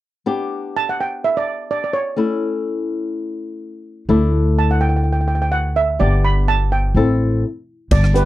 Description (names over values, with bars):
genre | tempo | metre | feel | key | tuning
calypso | 126 BPM | 4/4 | straight | G major | A4 = 440 Hz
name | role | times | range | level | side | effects
flamenco guitar | accompaniment | 0.3-8.2 s | A3 to A4 | -21 LUFS | left 4 dB | none
steel pan | melody | 0.8-8.3 s | B4 to B5 | -20 LUFS | right 4 dB | none
upright bass | bass | 4.1-8.2 s | G1 to D2 | -16 LUFS | equal | none
crisp fusion drum kit | drums | 7.9-8.3 s | crash cymbal, hi-hat, kick drum, rim click | -19 LUFS | equal | none
room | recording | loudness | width
little or no reverb | dry, close 1970s-style studio recording | -16 LUFS | side -15 dB against mid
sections
0.3-7.9 A section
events
stop 7.4-7.9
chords
0.3 G; 2.2 A; 4.1 Dsus2; 6.0 G; 7.0 Am7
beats
| 0.26 0.74 1.22 1.70 | 2.17 2.65 3.13 3.61 | 4.09 4.56 5.04 5.52 | 6.00 6.48 6.95 7.43 | 7.91